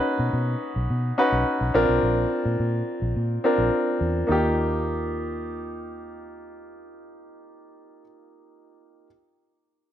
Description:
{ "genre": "1980s-style pop", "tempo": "106 BPM", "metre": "4/4", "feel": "straight", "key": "Eb major", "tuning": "A4 = 440 Hz", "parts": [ { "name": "clear concert grand piano", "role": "accompaniment", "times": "0.0-9.1 s", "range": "Bb3 to B4", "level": "-24 LUFS", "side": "equal", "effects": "none" }, { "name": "vintage muted fingered electric bass", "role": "bass", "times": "0.2-8.0 s", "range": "Bb1 to B2", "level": "-26 LUFS", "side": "equal", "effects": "none" } ], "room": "moderate plate reverb, RT60 2.9 s", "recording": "none", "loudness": "-21 LUFS", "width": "side -11 dB against mid", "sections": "0.0-4.3 A section; 4.3-6.6 B section", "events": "none", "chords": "0.0 Badd9; 1.7 Bbadd9; 4.3 Ebadd9" }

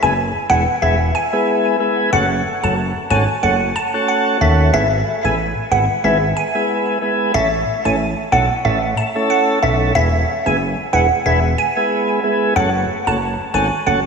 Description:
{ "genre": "dancehall", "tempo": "92 BPM", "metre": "4/4", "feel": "swing 56% on 16ths", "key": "E major", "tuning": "A4 = 441 Hz", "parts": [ { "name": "glassy wavetable pluck", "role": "melody", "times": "0.0-14.0 s", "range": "E5 to A5", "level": "-19 LUFS", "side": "equal", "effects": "chorus, diffuse ambient delay" }, { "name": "tonewheel organ", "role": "accompaniment", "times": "0.0-14.0 s", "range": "G#3 to A4", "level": "-18 LUFS", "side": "equal", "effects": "slow rotary speaker" }, { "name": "fat analog bass", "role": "bass", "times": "0.0-14.1 s", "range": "E1 to D#2", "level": "-18 LUFS", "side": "equal", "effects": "none" } ], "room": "wet lush hall reverb, RT60 3.3 s", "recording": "dreamy mix soaked in reverb, small room ambience", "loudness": "-14 LUFS", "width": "side -5 dB against mid", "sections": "0.0-14.1 A section", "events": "none", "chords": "0.0 E; 2.1 F#m; 4.7 E/G#; 7.3 A; 10.0 E; 12.6 F#m" }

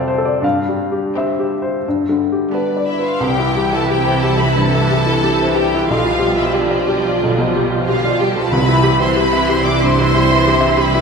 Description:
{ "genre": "classical, romantic movement for piano and orchestra", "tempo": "82-93 BPM", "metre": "4/4", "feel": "rubato", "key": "C major", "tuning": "A4 = 440 Hz", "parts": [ { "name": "clear baby grand piano", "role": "melody", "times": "0.0-11.0 s", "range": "B1 to A5", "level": "-17 LUFS", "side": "left 2 dB", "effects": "none" }, { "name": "clear studio violin section", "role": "second line", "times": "0.0-11.0 s", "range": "D4 to D5", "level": "-22 LUFS", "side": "left 1 dB", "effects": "none" }, { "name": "rich studio viola section", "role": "accompaniment", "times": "0.0-11.0 s", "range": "C3 to F4", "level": "-22 LUFS", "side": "right 2 dB", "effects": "none" }, { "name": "warm studio cello section", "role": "bass", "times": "0.5-11.0 s", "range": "G2 to C3", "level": "-22 LUFS", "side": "right 4 dB", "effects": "none" }, { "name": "rich studio violin section", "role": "melody", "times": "2.5-11.0 s", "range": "D5 to D6", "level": "-21 LUFS", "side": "equal", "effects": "none" }, { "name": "dark French horn section", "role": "sustained chords", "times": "3.2-11.0 s", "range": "E3 to G4", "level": "-24 LUFS", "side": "left 1 dB", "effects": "none" }, { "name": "rich studio double bass section", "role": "bass", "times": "3.2-11.0 s", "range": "B1 to C2", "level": "-26 LUFS", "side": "right 4 dB", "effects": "none" }, { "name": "timpani", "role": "percussion", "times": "8.5-9.5 s", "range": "C3", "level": "-24 LUFS", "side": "right 2 dB", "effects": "none" } ], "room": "wet scoring stage reverb, RT60 1.6 s", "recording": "recorded in a church or concert hall", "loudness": "-13 LUFS", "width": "side -5 dB against mid", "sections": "0.0-3.2 A section; 3.2-11.0 B section", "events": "none", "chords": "0.4 C/G; 1.9 G; 3.2 C; 5.9 G7/B; 8.5 C" }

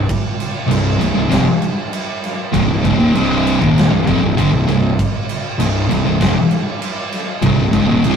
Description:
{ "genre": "stoner and doom metal", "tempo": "98 BPM", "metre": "4/4", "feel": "straight", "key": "C phrygian", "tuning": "A4 = 441 Hz", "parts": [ { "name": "fuzz fingered electric bass", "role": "bass", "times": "0.0-8.2 s", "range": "C1 to G1", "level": "-23 LUFS", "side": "equal", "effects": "overdrive" }, { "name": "big rock drum kit", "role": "drums", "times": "0.1-8.2 s", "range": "crash cymbal, kick drum, snare drum", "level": "-19 LUFS", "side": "right 2 dB", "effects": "none" }, { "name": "thick fuzz guitar", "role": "riff", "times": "0.7-8.2 s", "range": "C2 to Eb3", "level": "-14 LUFS", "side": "equal", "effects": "distortion" } ], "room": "moderate stone room reverb, RT60 1.2 s", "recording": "rough rehearsal-room recording, warm saturation", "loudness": "-13 LUFS", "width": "side -7 dB against mid", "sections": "0.0-8.2 A section", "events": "none", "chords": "0.0 Cm" }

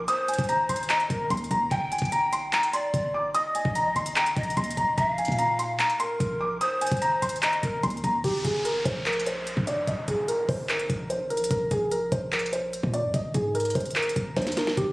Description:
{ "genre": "hip hop, trap", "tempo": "147 BPM", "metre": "4/4", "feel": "half-time", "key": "unclear", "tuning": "A4 = 441 Hz", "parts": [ { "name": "felt-muted upright piano", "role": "melody", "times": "0.0-14.9 s", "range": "G4 to Eb6", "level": "-26 LUFS", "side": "equal", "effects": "low-pass filter, ping-pong delay" }, { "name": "breathy hollow large pan pipes", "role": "second line", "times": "0.0-7.8 s", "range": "Bb4 to G5", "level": "-30 LUFS", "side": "equal", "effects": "ping-pong delay" }, { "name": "warm 808-style bass", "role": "bass", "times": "0.0-14.9 s", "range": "Eb1 to Bb2", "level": "-33 LUFS", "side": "equal", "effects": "none" }, { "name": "trap drum kit", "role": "drums", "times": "0.1-14.9 s", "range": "handclaps, hi-hat, kick drum, snare drum", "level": "-29 LUFS", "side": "equal", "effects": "none" }, { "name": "downlifter", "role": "sound effects", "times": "8.2-11.5 s", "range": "none", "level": "-36 LUFS", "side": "equal", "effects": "none" } ], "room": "light reverb, digital ambience", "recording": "recorded on a phone in the room, studio reverb", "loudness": "-24 LUFS", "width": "side -21 dB against mid", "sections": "0.0-8.2 A section; 8.2-14.9 B section", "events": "drum fill 14.4-14.8", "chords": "0.1 Ab; 1.7 G5; 3.3 Eb; 5.0 Bb5; 6.6 Ab; 8.2 Gm; 9.9 Eb; 11.5 Bb5; 13.1 Ab5" }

